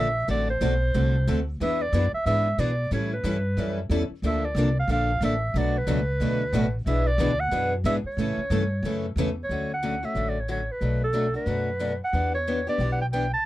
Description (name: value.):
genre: acoustic string swing (jazz manouche).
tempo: 182 BPM.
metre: 4/4.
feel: swing 61% on 8ths.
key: D major.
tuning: A4 = 440 Hz.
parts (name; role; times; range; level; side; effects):
breathy clarinet; melody; 0.0-13.5 s; A4 to A5; -28 LUFS; right 2 dB; none.
picked acoustic archtop guitar; accompaniment; 0.0-13.2 s; B2 to A4; -29 LUFS; left 4 dB; none.
picked steel-string acoustic guitar; accompaniment; 0.0-9.3 s; B2 to B4; -32 LUFS; right 8 dB; none.
upright bass; bass; 0.0-13.3 s; A1 to B2; -26 LUFS; equal; none.
room: little or no reverb.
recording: dry, close 1970s-style studio recording.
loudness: -23 LUFS.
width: side -15 dB against mid.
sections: 0.0-9.5 A section; 9.5-13.5 B section.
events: none.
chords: 0.3 D7; 1.6 E7; 2.9 A7; 4.2 Bbmaj7; 5.6 Bm7; 6.9 E7/B; 8.2 A; 9.5 Dmaj7; 10.8 Bm7; 12.1 Em7.